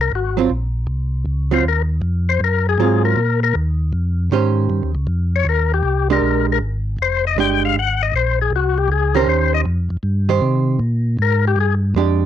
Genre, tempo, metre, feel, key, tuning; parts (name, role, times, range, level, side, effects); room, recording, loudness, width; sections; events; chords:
jazz; 157 BPM; 4/4; swing 66% on 8ths; Eb mixolydian; A4 = 440 Hz
percussive tonewheel organ; melody; 0.0-11.7 s; Gb4 to G5; -19 LUFS; left 9 dB; slow rotary speaker, cassette tape
mellow tonewheel organ; bass; 0.0-12.3 s; F1 to C3; -18 LUFS; equal; slow rotary speaker
hollow-body jazz guitar; accompaniment; 0.4-12.3 s; Eb3 to C5; -18 LUFS; right 10 dB; cassette tape
light reverb; home recording on cassette; -16 LUFS; side -10 dB against mid
0.0-12.3 A section
tonewheel organ solo 0.0-12.3
0.1 Ab13; 3.2 Eb13; 6.2 Bb6; 7.8 Abadd9; 9.3 Eb13; 10.8 Bb6